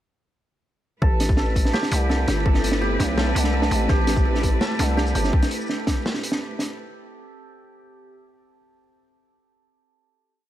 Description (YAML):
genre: half-time drum and bass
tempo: 167 BPM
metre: 4/4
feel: half-time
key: A minor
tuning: A4 = 440 Hz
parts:
  - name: rich symphonic cello section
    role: sustained chords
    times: 1.0-6.7 s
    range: A3 to B4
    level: -30 LUFS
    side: equal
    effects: sidechain pumping
  - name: santur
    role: arpeggios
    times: 1.0-8.1 s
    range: G4 to A4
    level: -30 LUFS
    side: right 3 dB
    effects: dub echo
  - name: growling 808-style bass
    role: bass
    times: 1.0-5.3 s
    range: G1 to C2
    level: -23 LUFS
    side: equal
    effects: none
  - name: electronic kick drum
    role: drums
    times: 1.0-5.9 s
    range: none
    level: -20 LUFS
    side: equal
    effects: none
  - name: metallic inharmonic drone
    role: texture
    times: 2.0-5.3 s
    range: C4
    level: -34 LUFS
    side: equal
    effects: chorus, built-in reverb
  - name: crunchy breakbeat drum kit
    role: drums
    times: 1.2-6.7 s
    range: hi-hat, shaker, snare drum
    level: -26 LUFS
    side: equal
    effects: none
room: little or no reverb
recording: none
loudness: -19 LUFS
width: side -13 dB against mid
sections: 1.0-6.8 drop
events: drop 1.0-6.8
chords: 1.0 Amadd9